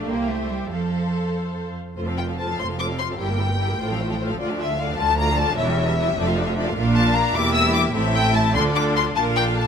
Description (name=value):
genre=quick classical-period movement for string orchestra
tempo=100 BPM (dotted quarters)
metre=6/8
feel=rubato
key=F major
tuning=A4 = 440 Hz
part: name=warm studio violin section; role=melody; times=0.0-9.7 s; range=E5 to E6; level=-24 LUFS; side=left 5 dB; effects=none
part: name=rich chamber violin section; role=second line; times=0.0-9.7 s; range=E4 to F5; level=-28 LUFS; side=left 1 dB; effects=none
part: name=rich chamber viola section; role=accompaniment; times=0.0-9.7 s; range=D3 to C5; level=-27 LUFS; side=equal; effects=none
part: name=rich chamber cello section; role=bass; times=0.0-9.7 s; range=D2 to Bb3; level=-26 LUFS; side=right 2 dB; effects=none
part: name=warm studio double bass section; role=bass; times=0.0-9.7 s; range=E1 to F2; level=-26 LUFS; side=right 2 dB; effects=none
room=moderate scoring stage reverb, RT60 1.7 s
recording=none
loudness=-19 LUFS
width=side -7 dB against mid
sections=0.0-2.0 A section; 2.0-9.7 B section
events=none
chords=0.1 C7; 0.7 F; 3.2 Edim/G; 3.8 F/A; 4.4 Dm; 5.6 C#dim/E; 6.2 Dm/F; 6.8 Bb; 7.4 Edim; 8.0 Am; 8.6 Dm; 9.2 Bb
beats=0.10 | 0.72 1.35 | 1.98 2.59 | 3.19 3.79 | 4.39 4.98 | 5.58 6.17 | 6.76 7.35 | 7.95 8.55 | 9.16